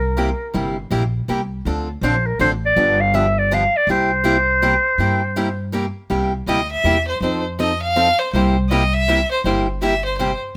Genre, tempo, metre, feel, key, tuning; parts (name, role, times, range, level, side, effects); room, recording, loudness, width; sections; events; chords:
acoustic string swing (jazz manouche); 162 BPM; 3/4; swing 62% on 8ths; C mixolydian; A4 = 438 Hz
breathy clarinet; melody; 0.0-5.7 s; Bb4 to F5; -20 LUFS; equal
upright bass; bass; 0.0-10.3 s; G1 to G2; -24 LUFS; equal
picked steel-string acoustic guitar; accompaniment; 0.2-10.3 s; C3 to A4; -24 LUFS; equal
clear violin; second line; 6.5-10.4 s; C5 to F5; -22 LUFS; equal
light reverb; -19 LUFS; mono
0.0-6.1 A section; 6.1-10.6 B section
violin solo 6.1-10.6
0.0 C7; 1.7 Dm7; 2.8 G7; 3.9 C7; 7.2 F7; 8.3 C7